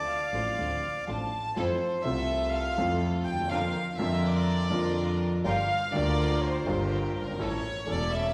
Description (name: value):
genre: tango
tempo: 123 BPM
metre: 4/4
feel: rubato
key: unclear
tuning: A4 = 442 Hz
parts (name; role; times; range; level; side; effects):
- bandoneon; melody; 0.0-1.1 s; D5; -33 LUFS; equal; none
- warm chamber violin section; second line; 0.0-8.3 s; Bb4 to A5; -34 LUFS; equal; none
- dark baby grand piano; accompaniment; 0.3-8.3 s; E1 to A4; -34 LUFS; equal; none
- clear studio string section; stabs; 0.3-8.3 s; C#4 to C5; -40 LUFS; equal; none
- rich double bass; bass; 0.3-8.3 s; E1 to F2; -34 LUFS; equal; none
room: wet scoring stage reverb, RT60 1.8 s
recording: recorded in a church or concert hall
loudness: -29 LUFS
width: mono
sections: 0.0-1.6 A section; 1.6-8.3 B section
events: violin section solo 1.6-8.3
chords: 0.0 Dm7; 1.6 Fmaj7; 3.5 Bb/F; 5.5 Gm7; 7.4 A